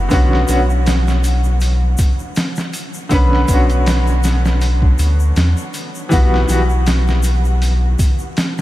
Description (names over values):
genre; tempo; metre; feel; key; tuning
trip hop; 80 BPM; 4/4; swing 55% on 16ths; B minor; A4 = 439 Hz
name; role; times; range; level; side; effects
bright upright piano; accompaniment; 0.0-6.6 s; D3 to B4; -20 LUFS; equal; tremolo, vintage 12-bit sampler grit, tape echo
warm sub bass; bass; 0.0-8.0 s; B1 to E2; -14 LUFS; equal; none
trip hop sampler-style drum kit; drums; 0.1-8.6 s; hi-hat, kick drum, snare drum; -18 LUFS; equal; overdrive, studio reverb
egg shaker; percussion; 0.1-8.6 s; none; -33 LUFS; left 4 dB; none
room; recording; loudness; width
moderate huge ambient reverb, RT60 7.7 s; dreamy mix soaked in reverb, vinyl crackle; -13 LUFS; side -16 dB against mid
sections
0.0-8.6 A section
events
none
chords
0.1 Bmadd9; 6.1 Emadd9/B